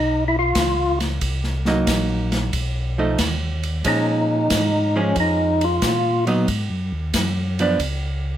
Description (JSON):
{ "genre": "soul jazz organ trio", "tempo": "91 BPM", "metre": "4/4", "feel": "swing 68% on 8ths", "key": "unclear", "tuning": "A4 = 440 Hz", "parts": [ { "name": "percussive tonewheel organ", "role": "melody", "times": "0.0-6.3 s", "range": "C#4 to E#4", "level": "-20 LUFS", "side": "left 1 dB", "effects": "slow rotary speaker, overdrive" }, { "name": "archtop guitar, miked and amplified", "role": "accompaniment", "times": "0.0-7.8 s", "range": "E#3 to Eb4", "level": "-22 LUFS", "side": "right 2 dB", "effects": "none" }, { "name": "mellow tonewheel organ", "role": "bass", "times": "0.0-8.4 s", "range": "Bb1 to A#2", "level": "-23 LUFS", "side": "equal", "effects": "chorus vibrato, slow rotary speaker" }, { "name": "open jazz drum kit", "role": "drums", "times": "0.6-8.0 s", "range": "hi-hat, kick drum, ride cymbal, snare drum", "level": "-26 LUFS", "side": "right 1 dB", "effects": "none" } ], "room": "light reverb", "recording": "none", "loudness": "-18 LUFS", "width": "side -11 dB against mid", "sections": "0.0-8.4 A section", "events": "none", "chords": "0.0 Bmaj9#11; 1.2 Cm7b5; 2.5 B7#11; 3.9 A#m7; 6.5 G#m7; 7.8 N.C.", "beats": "0.56 | 1.22 1.88 2.54 3.19 | 3.85 4.51 5.17 5.83 | 6.49 7.14 7.80" }